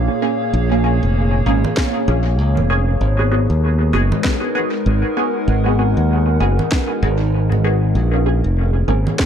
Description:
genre	ambient dub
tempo	97 BPM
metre	4/4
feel	swing 60% on 16ths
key	G# dorian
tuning	A4 = 440 Hz
part	warbly tape-like pad	sustained chords	0.0-9.3 s	A#2 to F#5	-22 LUFS	equal	chorus, built-in reverb, phaser
part	modern bright fingered electric bass	bass	0.0-9.0 s	E#1 to D#2	-16 LUFS	equal	none
part	filtered dub chord stab	stabs	0.2-9.0 s	A#3 to G#4	-22 LUFS	right 1 dB	phaser, lush chorus, dub echo
part	electronic congas and snare drum	drums	1.6-9.3 s	none	-24 LUFS	right 1 dB	overdrive, dub echo
part	electronic kick drum	drums	1.8-9.3 s	none	-20 LUFS	equal	overdrive
room	little or no reverb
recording	none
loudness	-14 LUFS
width	side -8 dB against mid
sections	0.0-9.3 A section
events	none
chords	0.0 A#m7; 3.0 G#m7; 8.0 A#m7

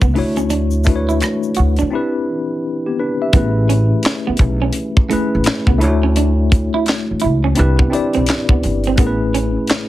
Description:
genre	R&B, neo-soul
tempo	85 BPM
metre	4/4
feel	swing 63% on 16ths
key	A major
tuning	A4 = 437 Hz
part	semi-hollow electric guitar	second line	0.0-9.5 s	A3 to F#4	-22 LUFS	right 6 dB	plate reverb
part	tine electric piano	accompaniment	0.0-9.9 s	A3 to E5	-18 LUFS	left 2 dB	medium stereo tremolo, plate reverb
part	upright bass	bass	0.0-9.6 s	G1 to D3	-17 LUFS	equal	none
part	tight funk drum kit	drums	0.0-9.9 s	handclaps, hi-hat, kick drum, rim click, snare drum	-15 LUFS	equal	none
part	egg shaker and finger snaps	percussion	0.0-1.9 s	none	-31 LUFS	equal	none
room	light reverb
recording	heavily compressed radio sound, multiband compression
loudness	-14 LUFS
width	side -15 dB against mid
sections	0.0-3.3 A section; 3.3-9.9 B section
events	break 1.9-3.3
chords	0.2 Dmaj9; 1.9 Cmaj9; 3.3 Amaj9; 5.8 Dmaj9; 7.6 Cmaj9; 9.0 Amaj9

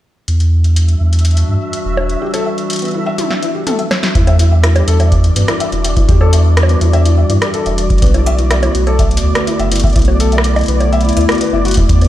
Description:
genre	IDM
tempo	124 BPM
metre	4/4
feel	straight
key	E minor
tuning	A4 = 442 Hz
part	warbly tape-like pad	sustained chords	0.3-12.1 s	D3 to F#4	-20 LUFS	equal	chorus, built-in reverb
part	warm sub bass	bass	0.3-12.1 s	E1 to G2	-12 LUFS	equal	tube saturation
part	electro analog drum machine	drums	0.3-12.1 s	bongos, hi-hat, rim click, snare drum, toms	-20 LUFS	equal	none
part	flickering grainy texture	texture	0.9-12.1 s	D5 to E5	-24 LUFS	equal	built-in reverb
part	felt-muted upright piano	arpeggios	2.2-12.1 s	B3 to E5	-20 LUFS	left 5 dB	ping-pong delay
part	electronic kick drum	drums	4.2-12.0 s	none	-13 LUFS	equal	none
room	digital ambience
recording	played on a big sound system in a bare room, stone room reverb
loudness	-10 LUFS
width	side -13 dB against mid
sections	0.3-4.2 A section; 4.2-12.1 B section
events	break 2.2-4.2; drum fill 3.2-4.2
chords	0.3 Em9; 8.0 Bm7

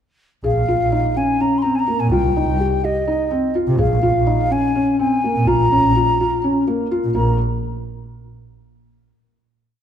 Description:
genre	contemporary instrumental, chamber music in an uneven meter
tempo	250 BPM (eighths)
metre	7/8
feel	straight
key	Bb dorian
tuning	A4 = 440 Hz
part	breathy mellow wooden flute	melody	0.4-7.4 s	Eb5 to C6	-21 LUFS	left 1 dB	none
part	felt-muted upright piano	arpeggios	0.4-7.4 s	Bb3 to Ab4	-19 LUFS	left 1 dB	none
part	rich double bass	bass	0.4-7.4 s	Bb1 to C3	-21 LUFS	right 1 dB	none
room	moderate concert hall reverb, RT60 1.9 s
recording	none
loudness	-15 LUFS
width	side -9 dB against mid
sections	0.4-7.1 A section; 7.1-8.8 final note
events	none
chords	0.4 Bbm7; 2.1 Cm; 3.8 Bbm7; 5.5 Bbm; 7.1 N.C.

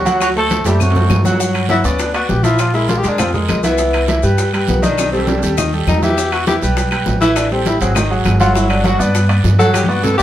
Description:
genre	Afro-Cuban jazz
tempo	201 BPM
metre	4/4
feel	straight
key	G major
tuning	A4 = 440 Hz
part	dark trumpet	melody	0.0-1.2 s	F#4 to A4	-19 LUFS	right 1 dB	none
part	warm tenor saxophone	second line	0.0-10.2 s	F3 to A4	-19 LUFS	left 2 dB	none
part	upright bass	bass	0.0-10.2 s	G1 to G2	-17 LUFS	equal	none
part	clear concert grand piano	accompaniment	0.1-10.2 s	Eb3 to F#5	-18 LUFS	right 1 dB	none
part	bongos	percussion	0.1-10.1 s	none	-27 LUFS	left 4 dB	none
part	congas	percussion	0.1-10.1 s	none	-23 LUFS	left 1 dB	none
part	guiro	percussion	0.1-10.2 s	none	-30 LUFS	right 6 dB	none
part	maracas	percussion	0.1-10.2 s	none	-30 LUFS	left 4 dB	none
part	timbales	percussion	0.1-10.2 s	none	-25 LUFS	right 3 dB	none
part	claves	percussion	0.2-9.9 s	none	-29 LUFS	left 8 dB	none
room	wet studio reverb, RT60 0.6 s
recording	heard from further back in the room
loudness	-12 LUFS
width	side -12 dB against mid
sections	0.0-1.4 A section; 1.4-10.2 B section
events	drum fill 0.5-1.4, 5.0-6.2, 9.7-10.2; tenor saxophone solo 1.4-10.2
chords	0.2 D7; 1.4 Gmaj7; 2.6 Bbsus2; 3.8 Cmaj7; 5.0 Baug7; 6.2 Em; 7.4 A5; 8.0 Ab5; 8.6 Gmaj7

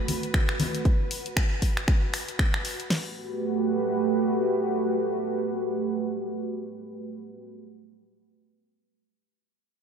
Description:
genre	deep house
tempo	117 BPM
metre	4/4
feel	swing 58% on 16ths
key	G major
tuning	A4 = 440 Hz
part	dark analog pad	sustained chords	0.0-7.4 s	A3 to B4	-27 LUFS	right 2 dB	chorus, sidechain pumping
part	soft string machine	texture	0.0-2.9 s	F#4 to B4	-40 LUFS	left 1 dB	ensemble chorus, sidechain pumping
part	house drum kit	drums	0.1-2.9 s	finger snaps, hi-hat	-31 LUFS	left 1 dB	studio reverb
part	congas	percussion	0.1-0.7 s	none	-32 LUFS	left 2 dB	sidechain pumping on perc
part	house drum kit	drums	0.3-3.0 s	hi-hat, kick drum, snare drum	-24 LUFS	equal	studio reverb
room	wet lush hall reverb, RT60 2.0 s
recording	dreamy mix soaked in reverb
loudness	-24 LUFS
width	side -7 dB against mid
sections	0.0-2.9 A section; 2.9-7.0 B section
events	drop 0.0-2.9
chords	0.0 Gmaj9 (rootless); 2.9 Gmaj9

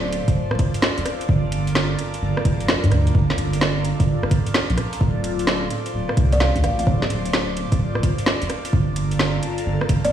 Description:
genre	UK garage, two-step garage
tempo	129 BPM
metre	4/4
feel	swing 66% on 16ths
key	G minor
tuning	A4 = 441 Hz
part	airy breathy pad	sustained chords	0.0-10.1 s	F4 to D5	-27 LUFS	equal	chorus, phaser, sidechain pumping
part	saturated sub bass	bass	0.0-10.1 s	D1 to G2	-22 LUFS	right 1 dB	none
part	garage drum kit	drums	0.1-10.1 s	hi-hat, rim click, snare drum	-23 LUFS	equal	overdrive
part	electronic kick drum	drums	0.3-10.0 s	none	-20 LUFS	equal	overdrive
part	kalimba	melody	6.3-7.1, 10.0-10.1 s	C5 to F5	-25 LUFS	equal	dub echo
room	light reverb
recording	played on a big sound system in a bare room, large studio reverb, vinyl crackle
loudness	-18 LUFS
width	side -10 dB against mid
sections	0.0-10.1 A section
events	none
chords	0.0 Dm7; 1.3 Gm9; 5.0 Dm7; 8.7 Gm9

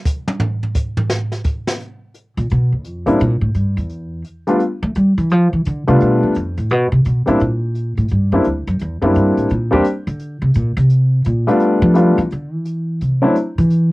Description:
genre	jazz piano trio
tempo	171 BPM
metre	4/4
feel	swing 65% on 8ths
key	unclear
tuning	A4 = 440 Hz
part	jazz brush drum kit	drums	0.1-13.8 s	hi-hat, kick drum, snare drum, toms	-19 LUFS	right 1 dB	cassette tape
part	upright bass	bass	2.4-13.9 s	D2 to A3	-15 LUFS	equal	none
part	warm grand piano	melody	3.1-13.3 s	F#3 to G4	-14 LUFS	left 1 dB	cassette tape
room	little or no reverb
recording	home recording on cassette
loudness	-14 LUFS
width	side -20 dB against mid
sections	0.0-1.8 A section; 1.8-13.9 A section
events	drum solo 0.0-1.8; upright bass solo 1.8-13.9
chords	0.0 N.C.; 1.8 G7 (rootless); 3.2 Em; 4.6 G7; 7.4 C7(no3); 11.6 G7; 13.0 N.C.

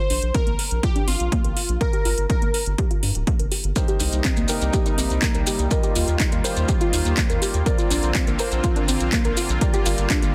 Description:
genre	progressive house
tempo	123 BPM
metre	4/4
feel	straight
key	unclear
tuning	A4 = 440 Hz
part	plucky unison lead	melody	0.0-2.8 s	F4 to C5	-30 LUFS	equal	tape echo
part	soft round pluck	arpeggios	0.0-10.3 s	Bb3 to Bb4	-30 LUFS	equal	chorus, cassette tape, sidechain pumping, dub echo
part	saturated sub bass	bass	0.1-10.3 s	D1 to G2	-26 LUFS	equal	sidechain pumping
part	house drum kit	drums	0.1-10.3 s	handclaps, hi-hat	-30 LUFS	equal	overdrive
part	electronic kick drum	drums	0.3-10.2 s	none	-25 LUFS	equal	overdrive
part	supersaw pad	sustained chords	3.8-10.3 s	C3 to F4	-32 LUFS	equal	sidechain pumping
part	warm grand piano	stabs	3.8-10.3 s	Bb3 to Eb5	-32 LUFS	equal	sidechain pumping, dub echo
part	maracas	percussion	3.8-10.3 s	none	-33 LUFS	equal	none
room	light reverb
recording	dense, heavily limited modern master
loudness	-21 LUFS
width	mono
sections	0.0-10.3 A section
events	filter sweep on synth pluck 0.0-10.3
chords	0.0 Bbsus2; 1.8 Gm; 3.8 Cm7; 5.7 Ebadd9; 7.7 Bbadd9; 9.6 Gm7

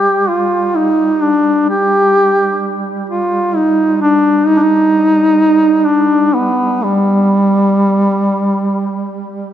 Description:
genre	caucasian folk, Caucasian lament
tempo	64 BPM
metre	3/4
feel	rubato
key	unclear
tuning	A4 = 443 Hz
part	mellow duduk	melody	0.0-9.2 s	G3 to G4	-11 LUFS	equal	none
part	dark duduk	drone	0.0-9.5 s	G3	-22 LUFS	right 3 dB	none
room	wet church reverb, RT60 4.1 s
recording	none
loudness	-10 LUFS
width	side -10 dB against mid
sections	0.0-9.5 A section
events	none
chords	none

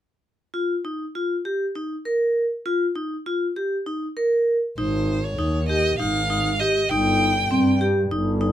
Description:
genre	contemporary instrumental, contemporary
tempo	198 BPM (eighths)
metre	7/8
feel	straight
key	unclear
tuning	A4 = 442 Hz
part	vibraphone with medium hard mallets	arpeggios	0.5-8.5 s	C4 to Bb4	-22 LUFS	equal	none
part	rich violin	melody	4.8-7.8 s	C5 to G5	-24 LUFS	equal	none
part	warm double bass	bass	4.8-8.5 s	G1 to G2	-24 LUFS	equal	none
room	moderate studio reverb, RT60 0.5 s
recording	minimal, uncompressed stereo recording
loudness	-20 LUFS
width	side -11 dB against mid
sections	0.5-4.8 A section; 4.8-8.5 B section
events	none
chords	0.5 Ebadd9; 4.8 Ab5; 6.9 Cm/G (rootless)

